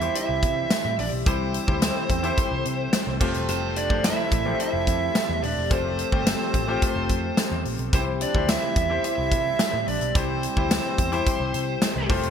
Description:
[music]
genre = 1980s-style pop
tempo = 108 BPM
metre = 4/4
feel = straight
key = C major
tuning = A4 = 443 Hz
[part]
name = fuzz lead guitar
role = melody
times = 0.0-12.1 s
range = C5 to E5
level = -28 LUFS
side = right 3 dB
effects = distortion, shimmer reverb
[part]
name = bright alto flute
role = second line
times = 0.0-12.1 s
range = C4 to E4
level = -35 LUFS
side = right 5 dB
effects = shimmer reverb, ping-pong delay
[part]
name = clear concert grand piano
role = accompaniment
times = 0.0-12.3 s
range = C3 to C5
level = -29 LUFS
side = left 4 dB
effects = lush chorus, shimmer reverb
[part]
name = glassy FM pad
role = sustained chords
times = 0.0-12.3 s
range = E3 to A4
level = -33 LUFS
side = left 1 dB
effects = ensemble chorus, built-in reverb
[part]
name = vintage muted picked electric bass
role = bass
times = 0.0-12.3 s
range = Eb1 to C3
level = -30 LUFS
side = equal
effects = none
[part]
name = huge arena drum kit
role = drums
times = 0.0-12.3 s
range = crash cymbal, hi-hat, kick drum, snare drum, tambourine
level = -25 LUFS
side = equal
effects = none
[sound]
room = moderate plate reverb, RT60 2.1 s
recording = bright 1980s-style digital production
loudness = -21 LUFS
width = side -8 dB against mid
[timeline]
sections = 0.0-12.3 A section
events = none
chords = 0.0 C; 3.2 Fadd9; 7.9 C

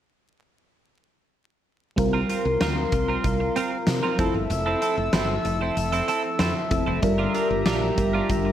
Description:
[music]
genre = 1980s-style pop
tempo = 95 BPM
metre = 4/4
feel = straight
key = unclear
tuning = A4 = 437 Hz
[part]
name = FM electric piano with soft pad layer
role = accompaniment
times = 2.0-8.5 s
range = F3 to Bb4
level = -26 LUFS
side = left 1 dB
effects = chorus, phaser
[part]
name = chorused pulse-width pad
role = sustained chords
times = 2.0-8.5 s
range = G4 to E6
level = -28 LUFS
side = equal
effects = none
[part]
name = twelve-string electric guitar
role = riff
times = 2.0-8.5 s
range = C4 to Bb4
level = -29 LUFS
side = right 5 dB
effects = analog chorus, ping-pong delay
[part]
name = woody fretless electric bass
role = bass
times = 2.0-8.5 s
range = F1 to C3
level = -28 LUFS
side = equal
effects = none
[part]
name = huge arena drum kit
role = drums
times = 2.0-8.4 s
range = hi-hat, kick drum, snare drum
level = -28 LUFS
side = equal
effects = gated reverb
[sound]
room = wet plate reverb, RT60 2.1 s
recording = bright 1980s-style digital production, vinyl crackle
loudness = -21 LUFS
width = side -10 dB against mid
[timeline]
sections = 2.0-8.5 A section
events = none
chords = 2.0 C7sus4; 4.2 Fmaj7; 7.0 Gm7

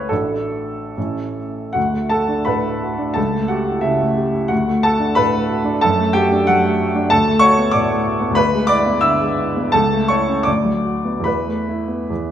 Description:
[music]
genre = classical, romantic character piece for solo piano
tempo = 69-97 BPM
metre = 2/4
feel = rubato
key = D major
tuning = A4 = 440 Hz
[part]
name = warm baby grand piano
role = solo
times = 0.0-12.3 s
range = A1 to E6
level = -15 LUFS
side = equal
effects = none
[sound]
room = wet recital hall reverb, RT60 1.8 s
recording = none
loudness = -15 LUFS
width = side -10 dB against mid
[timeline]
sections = 0.0-1.8 A section; 1.8-12.3 B section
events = none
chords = 0.1 D/A; 1.0 A; 1.8 D; 3.2 A7/C#; 4.5 D; 5.8 D/F#; 7.1 Bm7/D; 8.4 E7/D; 9.7 A/C#; 10.5 Bm/D; 11.3 Esus4

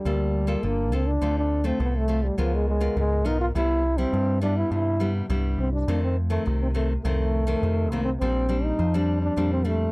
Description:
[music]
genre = samba and choro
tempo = 103 BPM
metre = 4/4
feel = straight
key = unclear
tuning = A4 = 439 Hz
[part]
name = mellow trombone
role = melody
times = 0.0-9.9 s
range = E#3 to E#4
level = -26 LUFS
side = equal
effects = none
[part]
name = nylon-string guitar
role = accompaniment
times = 0.1-9.9 s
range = F2 to A#4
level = -28 LUFS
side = left 2 dB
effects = none
[part]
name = deep dub picked electric bass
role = bass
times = 0.1-9.9 s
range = G1 to G2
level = -25 LUFS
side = equal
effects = none
[sound]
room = little or no reverb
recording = dry, close 1970s-style studio recording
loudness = -22 LUFS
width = side -25 dB against mid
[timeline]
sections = 0.0-9.9 A section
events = none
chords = 0.0 Gm9; 1.2 Dm7; 2.4 C#6; 3.5 Cmaj7; 5.9 F7; 8.2 Bb69

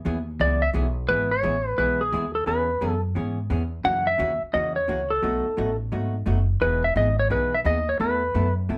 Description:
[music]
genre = country, western swing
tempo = 174 BPM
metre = 4/4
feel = swing 65% on 8ths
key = E major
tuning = A4 = 440 Hz
[part]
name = vintage hollow-body jazz guitar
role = accompaniment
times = 0.0-8.8 s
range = B2 to A4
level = -32 LUFS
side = equal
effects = none
[part]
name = upright bass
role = bass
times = 0.0-8.8 s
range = E1 to G#2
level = -29 LUFS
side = equal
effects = none
[part]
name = clean lap steel guitar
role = melody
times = 0.4-8.5 s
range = G#4 to F#5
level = -25 LUFS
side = equal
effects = none
[sound]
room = moderate studio reverb, RT60 0.6 s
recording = band playing live in one room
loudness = -24 LUFS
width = mono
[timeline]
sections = 0.0-1.1 A section; 1.1-8.8 B section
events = electric slide guitar solo 0.0-1.1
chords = 0.0 Eadd9; 1.1 E; 2.5 C#m7/E; 3.8 F#7; 5.2 B7; 6.6 Emaj7; 8.0 Asus2

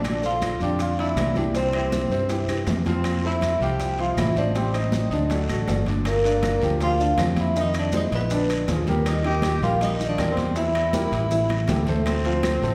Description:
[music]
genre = Afro-Cuban jazz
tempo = 160 BPM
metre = 4/4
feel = straight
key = F major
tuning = A4 = 440 Hz
[part]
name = vibraphone with soft mallets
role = melody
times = 0.0-12.7 s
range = Bb4 to G5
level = -30 LUFS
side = equal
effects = tape echo
[part]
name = breathy tenor saxophone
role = second line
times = 0.0-12.7 s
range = Bb3 to G4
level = -33 LUFS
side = equal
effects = tape echo
[part]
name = warm grand piano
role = accompaniment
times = 0.0-12.7 s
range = C3 to G5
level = -30 LUFS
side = equal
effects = none
[part]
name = fingered electric bass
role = bass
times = 0.0-12.7 s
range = G1 to G2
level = -28 LUFS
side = equal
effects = none
[part]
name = bongos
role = percussion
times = 0.0-12.7 s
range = none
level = -37 LUFS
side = equal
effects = none
[part]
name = congas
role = percussion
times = 0.0-12.7 s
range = none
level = -33 LUFS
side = equal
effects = none
[part]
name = guiro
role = percussion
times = 0.0-12.7 s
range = none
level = -44 LUFS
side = equal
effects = none
[part]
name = maracas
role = percussion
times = 0.0-12.7 s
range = none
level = -45 LUFS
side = equal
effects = none
[part]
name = timbales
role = percussion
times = 0.0-12.6 s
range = none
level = -38 LUFS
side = equal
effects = none
[part]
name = claves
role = percussion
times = 0.1-12.6 s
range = none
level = -42 LUFS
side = equal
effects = none
[sound]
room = wet recital hall reverb, RT60 1.7 s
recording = heard from further back in the room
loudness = -23 LUFS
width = mono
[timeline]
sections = 0.0-6.1 A section; 6.1-12.7 B section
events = drum fill 10.9-12.1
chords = 0.0 Bbmaj7; 1.5 C; 3.0 Fmaj7; 4.6 Am7b5; 5.3 D; 6.1 Gm7; 7.6 Fm7; 8.3 Bb7; 9.1 Eb; 10.6 Edim; 11.3 A5; 12.1 Dm7

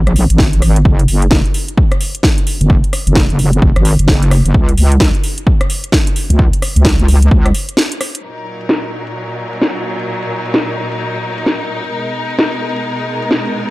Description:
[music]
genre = bass house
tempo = 130 BPM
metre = 4/4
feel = swing 61% on 16ths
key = Eb minor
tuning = A4 = 444 Hz
[part]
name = wobble bass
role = bass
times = 0.0-7.5 s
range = Gb1 to Db2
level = -11 LUFS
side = equal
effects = chorus, tube saturation, sidechain pumping
[part]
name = house drum kit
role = drums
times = 0.1-13.5 s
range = hi-hat, rim click, snare drum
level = -17 LUFS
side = equal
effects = overdrive, low-pass filter on hats, low-pass filter on snare, low-pass filter on room
[part]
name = electronic kick drum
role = drums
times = 0.4-7.4 s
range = none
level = -13 LUFS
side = equal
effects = overdrive
[part]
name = clear studio string section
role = sustained chords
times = 8.2-13.7 s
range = Bb2 to Bb4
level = -19 LUFS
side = left 1 dB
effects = sidechain pumping
[sound]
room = digital ambience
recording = dark, warm production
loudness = -11 LUFS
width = side -19 dB against mid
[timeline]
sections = 0.0-8.2 A section; 8.2-13.7 B section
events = break 7.8-8.2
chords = 0.0 Absus2; 0.9 N.C.; 8.2 Ebm; 11.9 Abmadd9

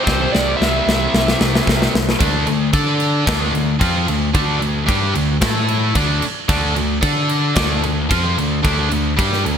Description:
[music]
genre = hard rock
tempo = 112 BPM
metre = 4/4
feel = straight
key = D minor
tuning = A4 = 439 Hz
[part]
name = bluesy overdriven lead guitar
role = melody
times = 0.0-1.9 s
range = C5 to E5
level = -22 LUFS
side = equal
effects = distortion, ping-pong delay
[part]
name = high-gain distorted guitar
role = riff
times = 0.0-9.6 s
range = C3 to D5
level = -19 LUFS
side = equal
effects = distortion
[part]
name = overdriven picked electric bass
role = bass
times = 0.1-9.6 s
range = C2 to D3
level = -20 LUFS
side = equal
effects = none
[part]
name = tight metal drum kit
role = drums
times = 0.1-9.6 s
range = crash cymbal, kick drum, snare drum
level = -20 LUFS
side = equal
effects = gated reverb
[sound]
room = light reverb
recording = bright 1980s-style digital production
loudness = -15 LUFS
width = side -8 dB against mid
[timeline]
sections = 0.0-2.2 A section; 2.2-9.6 B section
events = drum fill 0.1-2.2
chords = 0.0 C; 2.2 Dm; 5.4 A5; 6.0 Dm

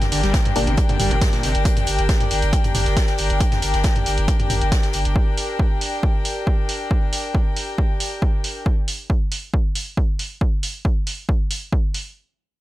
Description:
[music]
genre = driving peak-time techno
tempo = 137 BPM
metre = 4/4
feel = straight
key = G minor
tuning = A4 = 439 Hz
[part]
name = loose indie drum kit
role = drums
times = 0.0-5.0 s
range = hi-hat, snare drum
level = -32 LUFS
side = left 2 dB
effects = high-pass filter on hats, high-pass filter on snare, high-pass filter on room
[part]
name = punchy analog drum machine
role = drums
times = 0.0-12.0 s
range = hi-hat, toms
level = -26 LUFS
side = right 1 dB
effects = sidechain pumping on hats, sidechain pumping on toms
[part]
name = rich chamber string section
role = texture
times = 0.0-8.7 s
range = D4 to G5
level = -25 LUFS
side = left 2 dB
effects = sidechain pumping
[part]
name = overdriven acid bass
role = riff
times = 0.1-1.5 s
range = G2 to G3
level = -27 LUFS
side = equal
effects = distortion, analog chorus, sidechain pumping, ping-pong delay
[part]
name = saturated sub bass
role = bass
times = 0.1-5.2 s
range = G1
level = -21 LUFS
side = equal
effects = overdrive, sidechain pumping, low-pass filter
[part]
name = electronic kick drum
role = drums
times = 0.3-11.8 s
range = none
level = -19 LUFS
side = equal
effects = none
[part]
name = filtered dub chord stab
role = stabs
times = 0.6-0.7 s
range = G3 to D4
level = -27 LUFS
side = left 2 dB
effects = phaser, sidechain pumping, ping-pong delay
[sound]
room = small room ambience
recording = none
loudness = -18 LUFS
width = side -16 dB against mid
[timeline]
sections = 0.0-12.2 A section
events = none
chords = 0.0 Gm

